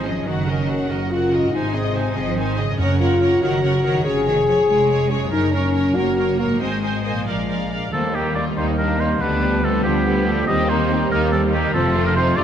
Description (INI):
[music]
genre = cinematic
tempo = 95 BPM (dotted quarters)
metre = 6/8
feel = straight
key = Gb lydian, Eb lydian from 7.9 s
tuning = A4 = 441 Hz
[part]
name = rich studio violin section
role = melody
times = 0.0-12.4 s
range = Bb3 to Ab5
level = -31 LUFS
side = left 4 dB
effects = none
[part]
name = rich chamber violin section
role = second line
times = 0.0-12.4 s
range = G3 to Eb5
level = -29 LUFS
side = left 3 dB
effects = none
[part]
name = clear symphonic viola section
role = accompaniment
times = 0.0-12.4 s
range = C3 to C5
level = -28 LUFS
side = right 3 dB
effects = none
[part]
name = dark French horn section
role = sustained chords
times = 0.0-12.4 s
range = G3 to Ab4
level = -22 LUFS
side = left 2 dB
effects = none
[part]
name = concert harp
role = arpeggios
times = 0.0-12.4 s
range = F2 to C6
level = -29 LUFS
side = left 5 dB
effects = none
[part]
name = rich symphonic cello section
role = bass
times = 0.0-12.4 s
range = D2 to Bb3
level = -26 LUFS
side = right 2 dB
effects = none
[part]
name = warm symphonic double bass section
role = bass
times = 0.0-12.4 s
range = F1 to Eb2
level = -25 LUFS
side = right 3 dB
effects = none
[part]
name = timpani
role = percussion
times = 2.8-3.4, 7.9-8.5 s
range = Gb2 to Eb3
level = -26 LUFS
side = right 1 dB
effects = none
[part]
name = warm oboe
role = second line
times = 7.9-12.4 s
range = G4 to Eb5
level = -23 LUFS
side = right 1 dB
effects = none
[part]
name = bright trombone section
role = sustained chords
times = 7.9-12.4 s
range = C3 to B3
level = -29 LUFS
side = right 4 dB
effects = none
[part]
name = mellow clarinet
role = second line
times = 8.6-12.4 s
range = Eb4 to A4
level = -27 LUFS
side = right 1 dB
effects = none
[sound]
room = wet scoring stage reverb, RT60 1.7 s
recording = none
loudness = -17 LUFS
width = side -9 dB against mid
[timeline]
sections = 0.0-7.9 A section; 7.9-12.4 B section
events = none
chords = 0.3 Ebm/Gb; 1.5 Ab; 2.8 Gb; 4.0 Db/F; 5.3 Gb; 6.6 Ab; 7.3 Bb7; 7.9 Eb; 9.2 G7/D; 10.5 Cm7/Eb; 11.7 F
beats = | 0.27 0.90 | 1.53 2.16 | 2.79 3.42 | 4.05 4.69 | 5.32 5.96 | 6.61 7.27 | 7.93 8.57 | 9.21 9.85 | 10.48 11.12 | 11.75 12.38